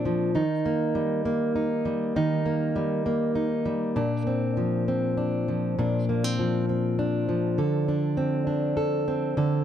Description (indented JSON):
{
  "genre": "pop",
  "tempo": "66 BPM (dotted quarters)",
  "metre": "6/8",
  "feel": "straight",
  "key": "Bb major",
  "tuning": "A4 = 440 Hz",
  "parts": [
    { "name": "fingerpicked plugged-in steel-string acoustic guitar", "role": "solo", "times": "0.0-9.6 s", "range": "Bb2 to A4", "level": "-23 LUFS", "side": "equal", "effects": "none" }
  ],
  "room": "little or no reverb",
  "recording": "dark, warm production",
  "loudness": "-23 LUFS",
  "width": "side -10 dB against mid",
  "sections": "0.0-9.6 A section",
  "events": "none",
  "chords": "0.3 Eb; 4.0 Bbadd9; 7.6 D5"
}